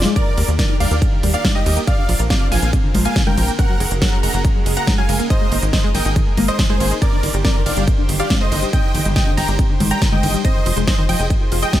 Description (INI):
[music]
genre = uplifting trance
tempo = 140 BPM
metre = 4/4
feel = straight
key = unclear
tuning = A4 = 441 Hz
[part]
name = dense compressed supersaw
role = melody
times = 0.0-11.8 s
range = G4 to Bb5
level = -24 LUFS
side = equal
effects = sidechain pumping, dub echo
[part]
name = wide unison pluck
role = second line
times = 0.0-11.8 s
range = C5 to Bb5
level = -31 LUFS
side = equal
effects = sidechain pumping, dub echo
[part]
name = lush unison pad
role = sustained chords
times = 0.0-11.8 s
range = Db3 to C5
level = -29 LUFS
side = equal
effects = chorus, sidechain pumping
[part]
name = tight sequencer bass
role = bass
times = 0.0-11.7 s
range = F1 to Eb2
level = -20 LUFS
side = equal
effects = tube saturation, sidechain pumping
[part]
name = big-room dance drum kit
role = drums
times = 0.0-11.8 s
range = congas, hi-hat, ride cymbal, snare drum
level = -22 LUFS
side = equal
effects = none
[part]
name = tight sequenced synth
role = arpeggios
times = 0.1-11.8 s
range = C3 to Eb4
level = -25 LUFS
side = left 1 dB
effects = chorus, phaser, sidechain pumping, dub echo
[part]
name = electronic kick drum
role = drums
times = 0.2-11.8 s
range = none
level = -18 LUFS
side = equal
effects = none
[sound]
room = little or no reverb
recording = none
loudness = -14 LUFS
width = side -13 dB against mid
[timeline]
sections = 0.0-11.8 A section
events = drum fill 0.0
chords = 0.2 Ebmaj7; 1.9 Bbadd9; 3.6 Gbadd9; 5.3 Absus2; 7.0 Cmadd9/G; 10.4 Fm7